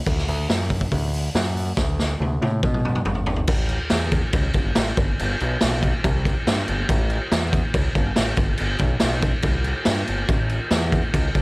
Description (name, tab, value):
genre	garage rock duo or trio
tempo	141 BPM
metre	4/4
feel	straight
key	unclear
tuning	A4 = 439 Hz
part	growling picked electric bass	bass	0.1-11.4 s	G1 to B2	-24 LUFS	equal	overdrive
part	raw garage drum kit	drums	0.1-11.4 s	crash cymbal, hi-hat, kick drum, snare drum, toms	-21 LUFS	equal	none
room	little or no reverb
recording	none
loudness	-19 LUFS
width	side -26 dB against mid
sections	0.0-3.5 A section; 3.5-11.4 B section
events	drum fill 1.8-3.5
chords	none